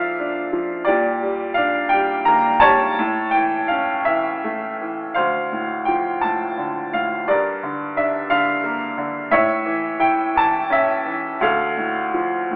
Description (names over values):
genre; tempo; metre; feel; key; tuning
classical, lyrical solo piano; 54-59 BPM (dotted quarters); 6/8; rubato; D minor; A4 = 440 Hz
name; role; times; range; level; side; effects
bright upright piano; solo; 0.0-12.6 s; D2 to Bb5; -17 LUFS; equal; none
room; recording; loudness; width
moderate recital hall reverb, RT60 1.5 s; telephone sound; -17 LUFS; side -35 dB against mid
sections
0.0-12.6 A section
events
none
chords
0.0 Bbmaj7; 0.9 Gm/Bb; 3.0 A; 5.2 Dm7; 7.3 Gm; 9.3 A; 11.4 Dm